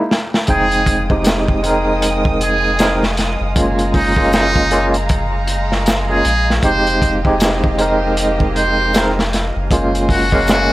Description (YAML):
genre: trip hop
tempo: 78 BPM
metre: 4/4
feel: swing 60% on 16ths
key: F minor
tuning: A4 = 440 Hz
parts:
  - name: overdriven tine electric piano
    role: accompaniment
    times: 0.0-10.7 s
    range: Ab3 to G5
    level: -18 LUFS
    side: right 1 dB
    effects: tremolo, tape echo
  - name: crunchy breakbeat drum kit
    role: drums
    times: 0.1-10.7 s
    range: hi-hat, kick drum, snare drum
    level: -17 LUFS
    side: equal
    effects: none
  - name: trumpet with metal mute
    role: melody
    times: 0.5-10.7 s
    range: Eb4 to C5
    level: -20 LUFS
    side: right 1 dB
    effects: tape echo
  - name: rich studio violin section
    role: sustained chords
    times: 0.5-10.7 s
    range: Ab3 to Eb6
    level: -24 LUFS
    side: equal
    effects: vintage 12-bit sampler grit
  - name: soft dub sub bass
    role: bass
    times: 0.5-10.7 s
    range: F1 to Bb1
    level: -21 LUFS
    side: equal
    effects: none
  - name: egg shaker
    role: percussion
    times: 1.3-10.7 s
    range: none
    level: -34 LUFS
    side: left 4 dB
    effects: none
room: small room ambience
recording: vinyl crackle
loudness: -13 LUFS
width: side -17 dB against mid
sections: 0.5-10.7 A section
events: break 0.0-0.5; drum fill 0.1-0.5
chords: 0.5 Fm9; 3.6 Gbmaj9; 6.6 Fm9; 9.7 Gbmaj9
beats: | 0.48 1.25 2.02 2.79 | 3.56 4.33 5.09 5.86 | 6.63 7.40 8.17 8.94 | 9.71 10.48